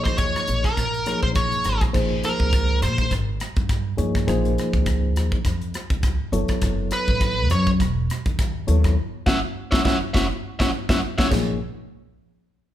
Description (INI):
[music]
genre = electric jazz fusion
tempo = 102 BPM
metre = 4/4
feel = swing 56% on 16ths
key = unclear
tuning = A4 = 440 Hz
[part]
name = smooth overdriven lead guitar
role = melody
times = 0.0-3.1, 6.9-11.3 s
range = Bb4 to Gb5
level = -25 LUFS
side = right 1 dB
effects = none
[part]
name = mellow reed electric piano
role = accompaniment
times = 0.0-11.6 s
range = F3 to Eb5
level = -26 LUFS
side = left 1 dB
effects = fast tremolo
[part]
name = upright bass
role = bass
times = 0.1-11.6 s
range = Fb1 to Bb2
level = -24 LUFS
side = equal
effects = none
[part]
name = crisp fusion drum kit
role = drums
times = 0.1-11.5 s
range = crash cymbal, hi-hat, kick drum, rim click, snare drum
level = -24 LUFS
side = equal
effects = none
[sound]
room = moderate large studio reverb, RT60 1.1 s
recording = band playing live in one room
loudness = -19 LUFS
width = side -12 dB against mid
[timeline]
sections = 0.0-1.9 A section; 1.9-11.3 B section; 11.3-12.7 C section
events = lead electric guitar solo 1.9-11.3; drum fill 9.0-11.3; band accent 9.0-11.3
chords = 0.0 Bbm7; 1.9 Bbm11; 6.3 Gbm7; 11.3 Bbm7